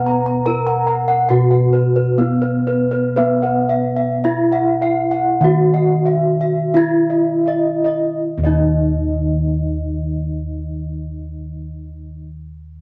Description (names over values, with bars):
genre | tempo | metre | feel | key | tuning
gamelan | 37-78 BPM | 4/4 | straight | Eb pelog | A4 = 440 Hz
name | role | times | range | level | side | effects
gamelan-type bronze metallophone | melody | 0.0-12.3 s | Cb4 to Bb4 | -21 LUFS | equal | none
gamelan-type bossed gongs | arpeggios | 0.0-12.2 s | Cb5 to Bb5 | -25 LUFS | equal | none
gamelan-type bronze metallophone | arpeggios | 0.0-12.2 s | Cb5 to Bb5 | -26 LUFS | equal | none
gamelan-type bossed gongs | bass | 0.0-12.2 s | Eb2 to Cb5 | -22 LUFS | equal | none
room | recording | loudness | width
moderate studio reverb, RT60 0.5 s | none | -17 LUFS | mono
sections
0.0-8.3 A section; 8.3-12.8 B section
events
slowing down 0.0-8.3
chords
none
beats
0.47 1.30 2.20 | 3.18 4.25 5.43 6.76 | 8.26 9.86 11.46